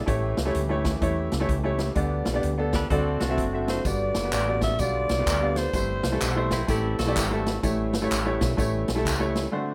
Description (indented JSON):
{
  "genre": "uptempo gospel",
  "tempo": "127 BPM",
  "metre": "4/4",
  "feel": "swing 64% on 8ths",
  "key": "unclear",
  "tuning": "A4 = 435 Hz",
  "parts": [
    { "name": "percussive tonewheel organ", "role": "sustained chords", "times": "0.0-9.7 s", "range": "D3 to G4", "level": "-37 LUFS", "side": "equal", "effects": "none" },
    { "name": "clear baby grand piano", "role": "accompaniment", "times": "0.1-9.7 s", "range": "G2 to E5", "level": "-30 LUFS", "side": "equal", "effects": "none" },
    { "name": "woody fretless electric bass", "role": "bass", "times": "0.1-9.5 s", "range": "F#1 to E2", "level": "-31 LUFS", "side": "equal", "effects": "ensemble chorus" },
    { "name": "swinging big-band drum kit", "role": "drums", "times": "0.1-9.4 s", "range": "hi-hat, kick drum, snare drum", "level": "-32 LUFS", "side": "equal", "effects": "none" },
    { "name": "clean electric guitar", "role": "second line", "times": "2.7-7.6 s", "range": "C4 to B4", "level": "-37 LUFS", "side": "equal", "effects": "none" },
    { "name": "breathy alto saxophone", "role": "melody", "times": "3.7-6.5 s", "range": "C5 to E5", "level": "-30 LUFS", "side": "equal", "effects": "none" },
    { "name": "tambourine and handclaps", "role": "percussion", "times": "3.9-9.4 s", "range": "none", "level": "-35 LUFS", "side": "equal", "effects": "none" }
  ],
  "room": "light reverb, studio reverb",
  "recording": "rough home demo mix",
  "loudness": "-25 LUFS",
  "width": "mono",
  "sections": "0.0-9.7 A section",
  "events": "break 9.5",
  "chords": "0.1 A7; 2.0 G; 2.9 D7; 3.9 Gmaj7; 4.8 G7/B; 5.7 C6/G; 7.6 A7"
}